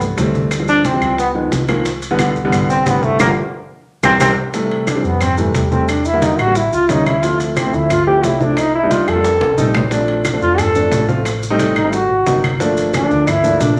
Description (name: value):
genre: Afro-Cuban jazz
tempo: 179 BPM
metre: 4/4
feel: straight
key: C major, F major from 4.5 s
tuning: A4 = 440 Hz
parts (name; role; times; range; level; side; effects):
- warm grand piano; accompaniment; 0.0-13.8 s; C3 to F4; -21 LUFS; equal; none
- hollow-body short-scale fingered electric bass; bass; 0.0-13.8 s; G1 to F2; -25 LUFS; equal; none
- congas; percussion; 0.0-13.8 s; none; -25 LUFS; equal; none
- maracas; percussion; 0.0-13.8 s; none; -34 LUFS; equal; none
- bongos; percussion; 0.2-13.8 s; none; -30 LUFS; equal; none
- timbales; percussion; 0.2-13.8 s; none; -30 LUFS; equal; none
- claves; percussion; 0.5-13.4 s; none; -28 LUFS; equal; none
- bright trombone; melody; 0.7-13.8 s; E3 to A4; -18 LUFS; equal; none
room: wet large studio reverb, RT60 0.9 s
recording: none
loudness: -15 LUFS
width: mono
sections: 0.0-4.5 A section; 4.5-13.8 A section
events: trombone solo 0.0-13.8; band accent 3.2-4.5; drum fill 3.5-4.5, 9.2-9.9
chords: 0.0 Fmaj9 (rootless); 0.5 Dm11; 1.2 Db9; 1.9 Cmaj9; 3.2 G7(no3); 3.9 C; 4.5 Fmaj9; 5.9 Em7b5; 6.6 A7b9; 7.2 Dm9; 8.6 Cm7; 9.2 F7; 9.9 Bbmaj7; 11.3 Am7b5; 11.9 Ab9; 12.6 Gm9